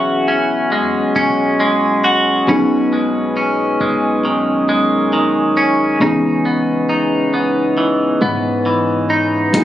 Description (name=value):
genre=contemporary R&B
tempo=68 BPM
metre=4/4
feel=straight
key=unclear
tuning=A4 = 440 Hz
part: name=mellow FM electric piano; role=accompaniment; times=0.0-9.6 s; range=E3 to G#4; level=-19 LUFS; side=left 1 dB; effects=chorus
part: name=mellow French horn section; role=sustained chords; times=0.0-9.6 s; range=E3 to E5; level=-20 LUFS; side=right 1 dB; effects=none
part: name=clean electric guitar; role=arpeggios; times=0.0-9.6 s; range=F#2 to F#4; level=-16 LUFS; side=equal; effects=tape echo
part: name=long sustained 808-style bass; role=bass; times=0.0-9.6 s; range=E1 to G#2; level=-27 LUFS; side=right 1 dB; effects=none
part: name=dusty soul sampler-style drum kit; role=drums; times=9.5-9.6 s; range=hi-hat, kick drum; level=-20 LUFS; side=right 1 dB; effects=vintage 12-bit sampler grit
room=light reverb, digital ambience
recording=recorded on a phone in the room, club reverb, compression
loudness=-13 LUFS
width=side -12 dB against mid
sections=0.0-9.6 A section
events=none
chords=0.0 E69; 2.5 B69; 6.0 C#m9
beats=0.72 1.60 | 2.48 3.37 4.25 5.13 | 6.01 6.89 7.78 8.66 | 9.54